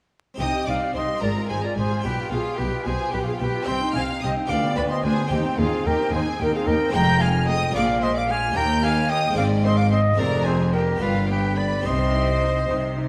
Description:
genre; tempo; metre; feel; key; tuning
classical, baroque-style concerto movement with solo episodes; 73 BPM (dotted quarters); 6/8; straight; C minor; A4 = 440 Hz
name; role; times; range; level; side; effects
harpsichord; accompaniment; 0.3-13.1 s; D2 to Ab4; -33 LUFS; equal; none
clear chamber violin section; melody; 0.4-13.1 s; F5 to G6; -34 LUFS; equal; none
mellow concert flute; melody; 0.4-13.1 s; Ab4 to C6; -28 LUFS; equal; none
clear chamber violin section; second line; 0.4-13.1 s; F4 to G5; -32 LUFS; equal; none
rich chamber viola section; accompaniment; 0.4-13.0 s; Ab3 to Ab4; -34 LUFS; equal; none
clear chamber double bass section; bass; 0.4-13.1 s; F1 to Eb2; -29 LUFS; equal; none
rich chamber cello section; bass; 0.4-13.1 s; D2 to C3; -29 LUFS; equal; none
room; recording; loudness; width
wet scoring stage reverb, RT60 1.9 s; vinyl crackle; -22 LUFS; mono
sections
0.4-13.1 A section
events
none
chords
0.4 Cm; 1.2 Fm/Ab; 2.0 G7/B; 3.7 Cm; 4.5 G7/D; 5.3 Cm/Eb; 6.9 Fm; 7.7 Bb5; 8.6 Eb; 9.4 Ab; 10.2 Dm7b5/F; 11.0 G; 11.8 Cm

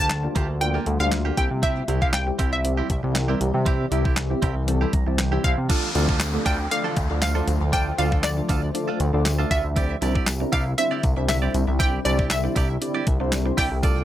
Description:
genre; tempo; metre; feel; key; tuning
dance-pop; 118 BPM; 4/4; straight; unclear; A4 = 440 Hz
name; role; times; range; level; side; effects
analog pluck; melody; 0.0-14.0 s; D5 to A5; -27 LUFS; equal; chorus, digital delay
soft electric-piano-like synth keys; accompaniment; 0.0-14.0 s; G3 to Bb5; -30 LUFS; equal; chorus, phaser, sidechain pumping
granular cloud pad; sustained chords; 0.2-14.0 s; D3 to G4; -33 LUFS; left 1 dB; built-in reverb, sidechain pumping
direct-recorded clean electric guitar; riff; 0.0-14.0 s; Bb3 to D5; -30 LUFS; right 6 dB; wide subtle chorus
fat analog bass; bass; 0.0-14.0 s; C2 to C3; -24 LUFS; equal; sidechain pumping
crisp 8-bit digital drum machine; drums; 0.1-14.0 s; crash cymbal, handclaps, hi-hat, kick drum, snare drum; -24 LUFS; equal; none
tambourine; percussion; 5.7-14.0 s; none; -41 LUFS; left 6 dB; none
downlifter; sound effects; 5.7-9.8 s; none; -33 LUFS; left 1 dB; none
room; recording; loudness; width
little or no reverb; none; -20 LUFS; side -12 dB against mid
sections
0.0-5.7 A section; 5.7-14.0 B section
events
synth keys fill 4.7-5.7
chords
0.0 Gm7/D; 1.4 C; 5.7 Dm; 9.8 Cadd9

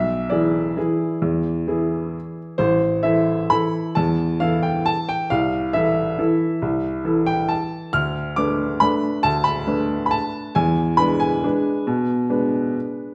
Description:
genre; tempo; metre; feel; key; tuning
classical, piano waltz; 125-147 BPM; 3/4; rubato; A minor; A4 = 440 Hz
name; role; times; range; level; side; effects
clear upright piano; solo; 0.0-13.1 s; A1 to F6; -21 LUFS; equal; none
room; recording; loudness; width
wet recital hall reverb, RT60 1.4 s; none; -21 LUFS; mono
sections
0.0-13.1 A section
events
none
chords
0.0 E7/B; 2.6 Am; 5.3 Am/C; 7.9 Bm7b5/D; 10.6 E7

